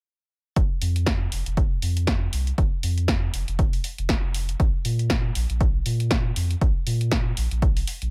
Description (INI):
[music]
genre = deep house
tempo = 119 BPM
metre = 4/4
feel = swing 57% on 16ths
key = unclear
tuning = A4 = 438 Hz
[part]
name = warm sub bass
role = bass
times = 0.6-8.1 s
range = F1 to Bb2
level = -27 LUFS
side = equal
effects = sidechain pumping
[part]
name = electronic kick drum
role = drums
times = 0.6-7.7 s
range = none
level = -26 LUFS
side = equal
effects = none
[part]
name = punchy analog drum machine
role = drums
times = 0.6-8.1 s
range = hi-hat, snare drum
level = -31 LUFS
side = equal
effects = none
[sound]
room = little or no reverb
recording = none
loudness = -24 LUFS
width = mono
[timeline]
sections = 0.6-8.1 A section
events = none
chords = none